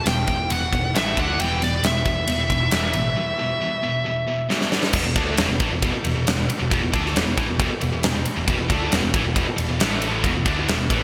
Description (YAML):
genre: hard rock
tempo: 136 BPM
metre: 4/4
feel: straight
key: E minor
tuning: A4 = 440 Hz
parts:
  - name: high-gain lead guitar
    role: melody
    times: 0.0-4.5 s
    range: D5 to G5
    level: -26 LUFS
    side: equal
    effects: distortion
  - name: overdriven semi-hollow guitar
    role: riff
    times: 0.0-11.0 s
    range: E2 to D4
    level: -30 LUFS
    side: equal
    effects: ensemble chorus
  - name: scooped high-gain guitar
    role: riff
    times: 0.0-11.0 s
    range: E2 to D4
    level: -29 LUFS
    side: equal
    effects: distortion
  - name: picked electric bass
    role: bass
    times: 0.1-11.0 s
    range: E1 to D2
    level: -30 LUFS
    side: equal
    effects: none
  - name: huge arena drum kit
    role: drums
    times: 0.1-11.0 s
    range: crash cymbal, kick drum, ride cymbal, snare drum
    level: -26 LUFS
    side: equal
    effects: gated reverb
room: moderate lush hall reverb, RT60 2.1 s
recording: bright 1980s-style digital production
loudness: -22 LUFS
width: mono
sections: 0.0-4.9 A section; 4.9-11.0 B section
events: drum fill 4.5-4.9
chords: 0.0 Em; 0.9 A5; 1.2 D5; 1.4 E5; 4.7 G5; 4.9 E5; 9.8 A5; 10.2 E5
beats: 0.06 0.50 0.94 | 1.39 1.83 2.28 2.72 | 3.16 3.61 4.05 4.50 | 4.94 5.38 5.82 6.27 | 6.71 7.15 7.59 8.03 | 8.47 8.91 9.35 9.79 | 10.24 10.68